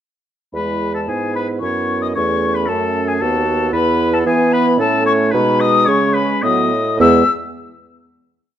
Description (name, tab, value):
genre	quick classical-period movement for wind quintet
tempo	112 BPM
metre	3/4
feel	rubato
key	E major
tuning	A4 = 440 Hz
part	hollow concert flute	melody	0.5-7.3 s	G#5 to E6	-19 LUFS	left 6 dB	none
part	mellow French horn	accompaniment	0.5-7.2 s	F#3 to B3	-23 LUFS	right 1 dB	none
part	mellow bassoon	bass	0.5-7.2 s	D#2 to E3	-18 LUFS	right 1 dB	none
part	warm oboe	second line	0.6-7.2 s	G#4 to E5	-23 LUFS	left 2 dB	none
part	mellow clarinet	accompaniment	0.6-7.2 s	B3 to F#4	-22 LUFS	right 7 dB	none
room	moderate large studio reverb, RT60 1.3 s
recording	dark, warm production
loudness	-14 LUFS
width	side -10 dB against mid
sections	0.6-7.0 A section; 7.0-8.6 final chord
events	none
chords	0.6 E; 2.2 A/E; 3.7 E5; 4.8 A; 5.3 B7; 7.0 E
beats	| 0.55 1.09 1.62 | 2.16 2.69 3.21 | 3.74 4.27 4.80 | 5.34 5.88 6.44 | 7.01